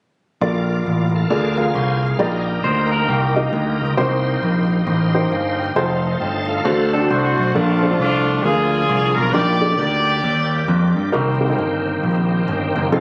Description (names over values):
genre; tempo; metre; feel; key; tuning
uptempo gospel; 134 BPM; 4/4; swing 62% on 8ths; Bb major; A4 = 440 Hz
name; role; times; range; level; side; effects
dark baby grand piano; accompaniment; 0.4-13.0 s; Bb2 to G5; -24 LUFS; equal; none
bright tonewheel organ; sustained chords; 0.4-13.0 s; D3 to A5; -27 LUFS; equal; fast rotary speaker, overdrive, chorus vibrato
growling picked electric bass; bass; 0.4-13.0 s; F1 to G2; -22 LUFS; equal; overdrive
clean electric guitar; second line; 2.6-3.8, 6.7-7.5 s; A3 to C5; -25 LUFS; equal; spring reverb
clear horn section; melody; 7.1-10.6 s; A3 to D5; -21 LUFS; equal; none
room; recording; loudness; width
light reverb, small room ambience; recorded on a phone in the room, studio reverb; -18 LUFS; mono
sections
0.4-7.5 A section; 7.5-13.0 B section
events
none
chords
0.4 Bbmaj7; 1.3 Bb7/D; 2.2 Ebmaj7/Bb; 4.0 Cm7; 5.8 F7; 6.7 D7; 7.5 Bbmaj7; 8.4 Bb7/D; 9.3 Ebmaj7/Bb; 11.1 Cm7